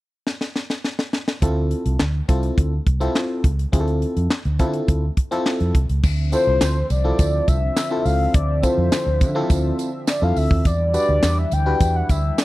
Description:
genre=early-eighties boogie funk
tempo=104 BPM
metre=4/4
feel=straight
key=D dorian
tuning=A4 = 440 Hz
part: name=tight funk drum kit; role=drums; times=0.3-12.4 s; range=crash cymbal, handclaps, hi-hat, kick drum, snare drum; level=-20 LUFS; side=equal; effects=none
part: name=FM electric piano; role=accompaniment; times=1.4-12.2 s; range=C4 to B4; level=-24 LUFS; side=equal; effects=chorus
part: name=vintage muted fingered electric bass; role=bass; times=1.4-12.3 s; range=C2 to D3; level=-20 LUFS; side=equal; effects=none
part: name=chorused pulse-width pad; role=sustained chords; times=6.0-12.4 s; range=D3 to E5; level=-31 LUFS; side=right 2 dB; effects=none
part: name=tambourine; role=percussion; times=6.0-12.4 s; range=none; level=-36 LUFS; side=right 14 dB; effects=none
part: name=mellow horn-like synth lead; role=melody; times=6.3-12.4 s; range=C5 to G5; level=-23 LUFS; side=left 2 dB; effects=chorus, tape echo
room=studio reverb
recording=dry, close 1970s-style studio recording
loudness=-18 LUFS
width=side -18 dB against mid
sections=0.0-1.4 A section; 1.4-6.0 B section; 6.0-12.4 C section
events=drum fill 0.3-1.4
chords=0.0 N.C.; 1.4 Dm9; 10.7 Em9

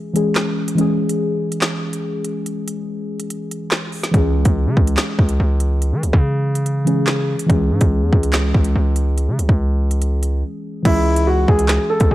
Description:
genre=hip hop, drill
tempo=143 BPM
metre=4/4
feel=half-time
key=C# minor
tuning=A4 = 440 Hz
part: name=muted felt-like synth keys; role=accompaniment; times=0.0-12.1 s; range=E3 to G#4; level=-21 LUFS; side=left 1 dB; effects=chorus, low-pass filter
part: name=drill drum kit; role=drums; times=0.2-12.1 s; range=crash cymbal, handclaps, hi-hat, kick drum, snare drum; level=-18 LUFS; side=equal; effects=none
part: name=distorted 808-style bass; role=bass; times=4.1-12.1 s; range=C#2 to E3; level=-18 LUFS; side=equal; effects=distortion
part: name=dark concert grand piano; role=melody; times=10.9-12.1 s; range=E4 to A4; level=-17 LUFS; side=equal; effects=low-pass filter
room=light reverb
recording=dark, warm production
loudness=-16 LUFS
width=side -16 dB against mid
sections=0.0-10.9 A section; 10.9-12.1 B section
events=break 0.0-4.1, 10.4-10.9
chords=0.0 C#m

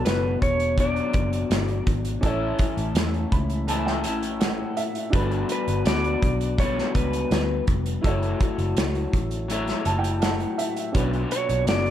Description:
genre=indie pop, bedroom pop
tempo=83 BPM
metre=4/4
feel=straight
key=G lydian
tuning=A4 = 440 Hz
part: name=clean lap steel guitar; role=melody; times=0.0-11.9 s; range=B4 to D5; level=-27 LUFS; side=right 1 dB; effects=lush chorus, analog delay
part: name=dark upright piano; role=accompaniment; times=0.0-11.9 s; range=C#4 to B5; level=-32 LUFS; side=right 4 dB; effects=none
part: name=electric guitar through a small old amp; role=accompaniment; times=0.0-11.9 s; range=A2 to C#5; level=-28 LUFS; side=left 5 dB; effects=wide subtle chorus, vibrato effect
part: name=vintage muted fingered electric bass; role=bass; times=0.1-11.9 s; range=E1 to E2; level=-27 LUFS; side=equal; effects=none
part: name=loose indie drum kit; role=drums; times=0.1-11.9 s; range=hi-hat, kick drum, snare drum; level=-26 LUFS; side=equal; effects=none
room=light reverb, small room ambience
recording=none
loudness=-21 LUFS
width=side -11 dB against mid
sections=0.0-11.9 A section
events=upright piano fill 3.0-5.1, 9.5-10.9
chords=0.0 Bmadd9; 2.2 A; 5.1 Gmaj7; 8.0 F#m7; 10.9 Bmadd9

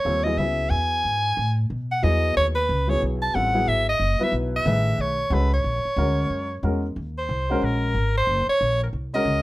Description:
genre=modal jazz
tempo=182 BPM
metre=4/4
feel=swing 62% on 8ths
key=unclear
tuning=A4 = 440 Hz
part: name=clear soprano saxophone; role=melody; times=0.0-9.4 s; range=Bb4 to A5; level=-23 LUFS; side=equal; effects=none
part: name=upright bass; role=bass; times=0.0-9.4 s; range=F#1 to B2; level=-24 LUFS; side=equal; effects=none
part: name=warm baby grand piano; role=accompaniment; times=0.1-9.4 s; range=D#3 to B4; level=-26 LUFS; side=left 1 dB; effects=none
room=moderate studio reverb, RT60 0.5 s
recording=none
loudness=-20 LUFS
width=side -18 dB against mid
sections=0.0-7.0 A section; 7.0-9.4 B section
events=soprano saxophone solo 7.0-9.4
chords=0.0 F#9sus4; 1.7 B9sus4; 5.6 A#7alt; 7.0 Ebm11

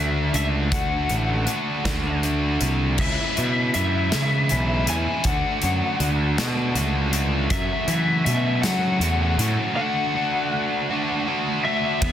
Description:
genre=indie rock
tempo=53 BPM (dotted quarters)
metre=6/8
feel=straight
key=unclear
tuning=A4 = 439 Hz
part: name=lead guitar through a small cranked amp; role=melody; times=0.0-12.1 s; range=E5 to G#5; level=-27 LUFS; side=left 3 dB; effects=overdrive
part: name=biting overdriven guitar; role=riff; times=0.0-12.1 s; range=E2 to G#4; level=-24 LUFS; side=right 1 dB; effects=none
part: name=fuzz picked electric bass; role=bass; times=0.0-12.1 s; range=A1 to F#3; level=-23 LUFS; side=equal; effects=overdrive
part: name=big rock drum kit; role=drums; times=0.3-12.1 s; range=crash cymbal, hi-hat, kick drum, ride cymbal, snare drum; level=-27 LUFS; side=equal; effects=none
room=light reverb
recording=dense, heavily limited modern master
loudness=-20 LUFS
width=side -10 dB against mid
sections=0.0-3.0 A section; 3.0-12.0 B section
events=none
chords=0.0 D; 3.0 C#m; 5.3 D; 7.5 F#m; 9.8 D

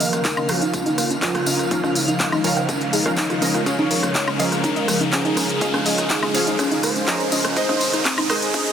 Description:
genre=progressive house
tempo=123 BPM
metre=4/4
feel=straight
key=unclear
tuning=A4 = 442 Hz
part: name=warm velvety synth lead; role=melody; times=0.0-8.7 s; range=Eb4 to Db5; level=-26 LUFS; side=left 1 dB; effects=chorus, dub echo
part: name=airy breathy pad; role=sustained chords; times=0.0-8.7 s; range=C3 to F5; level=-28 LUFS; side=equal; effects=chorus, phaser, sidechain pumping
part: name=soft round pluck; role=arpeggios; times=0.0-8.6 s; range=C4 to Eb5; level=-26 LUFS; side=equal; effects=lush chorus, cassette tape, sidechain pumping, dub echo
part: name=supersaw stab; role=stabs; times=0.0-8.7 s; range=F3 to Bb5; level=-26 LUFS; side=right 2 dB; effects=lush chorus, sidechain pumping, low-pass filter, dub echo
part: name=deep house drum kit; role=drums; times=0.0-8.7 s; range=handclaps, hi-hat, woodblock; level=-24 LUFS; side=left 1 dB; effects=none
part: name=tambourine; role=percussion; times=0.0-8.7 s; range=none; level=-31 LUFS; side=right 2 dB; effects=none
part: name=riser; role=sound effects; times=0.0-8.7 s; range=none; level=-28 LUFS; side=equal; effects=none
part: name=twinkling granular texture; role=texture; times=0.0-8.7 s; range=F5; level=-36 LUFS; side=equal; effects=none
part: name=electronic rim click, congas and cowbell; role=percussion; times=0.1-8.6 s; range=none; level=-28 LUFS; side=right 1 dB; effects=overdrive, sidechain pumping on snare, sidechain pumping on perc
part: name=electronic kick drum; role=drums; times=0.2-8.6 s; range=none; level=-30 LUFS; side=left 1 dB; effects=high-pass filter on kick
room=moderate huge ambient reverb, RT60 7.3 s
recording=dense, heavily limited modern master, high-pass filter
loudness=-18 LUFS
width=side -8 dB against mid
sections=0.0-8.7 A section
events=build-up 0.0-8.7; riser 0.0-8.7; filter sweep on synth pluck 0.0-8.7; filter sweep on supersaw synth 0.0-8.7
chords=0.0 Db; 7.6 Ab

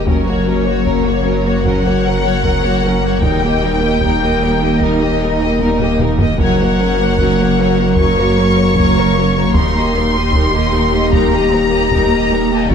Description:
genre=cinematic, hybrid orchestral and electronic film score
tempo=76 BPM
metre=4/4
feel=straight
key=unclear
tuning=A4 = 440 Hz
part: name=rich symphonic violin section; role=second line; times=0.0-12.7 s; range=Gb4 to Eb5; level=-22 LUFS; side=left 2 dB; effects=none
part: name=warm symphonic viola section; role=accompaniment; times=0.0-12.7 s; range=Gb3 to G4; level=-21 LUFS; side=right 1 dB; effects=none
part: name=glassy FM pad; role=sustained chords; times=0.0-12.7 s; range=Bb3 to Eb5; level=-22 LUFS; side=left 3 dB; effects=ensemble chorus, built-in reverb, phaser
part: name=mellow French horn section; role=sustained chords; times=0.0-12.7 s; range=Bb3 to Bb4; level=-21 LUFS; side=left 3 dB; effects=none
part: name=punchy sub bass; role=bass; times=0.0-12.7 s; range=Eb1 to Gb1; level=-23 LUFS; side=equal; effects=none
part: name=rich symphonic cello section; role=bass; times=0.0-12.7 s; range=Eb2 to Gb2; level=-20 LUFS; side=right 2 dB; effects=none
part: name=warm symphonic double bass section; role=bass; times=0.0-12.7 s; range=Gb1 to Eb2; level=-21 LUFS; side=right 5 dB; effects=none
part: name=rich symphonic violin section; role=melody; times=0.1-12.7 s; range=Db5 to Db6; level=-20 LUFS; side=left 3 dB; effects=none
part: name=taiko ensemble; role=drums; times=0.1-12.7 s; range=none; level=-20 LUFS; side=equal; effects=none
room=moderate concert hall reverb, RT60 2.2 s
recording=none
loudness=-12 LUFS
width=side -7 dB against mid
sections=0.0-12.7 A section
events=drum fill 5.6-6.4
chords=0.1 Gb; 3.2 Eb; 6.4 Gb; 9.6 Eb

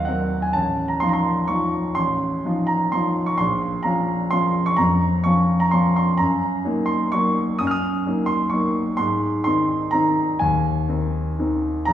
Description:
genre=classical, piano waltz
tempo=127 BPM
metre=3/4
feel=uneven beats, rubato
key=unclear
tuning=A4 = 440 Hz
part: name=clear concert grand piano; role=solo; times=0.0-11.9 s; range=A1 to F6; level=-18 LUFS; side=equal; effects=none
room=wet recital hall reverb, RT60 1.8 s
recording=recorded in a church or concert hall, small room ambience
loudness=-18 LUFS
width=side -10 dB against mid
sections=0.0-11.9 A section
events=none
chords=0.0 Ab9; 0.5 F7/A; 3.4 Bbm; 6.2 Ebm/Gb; 9.0 Ab

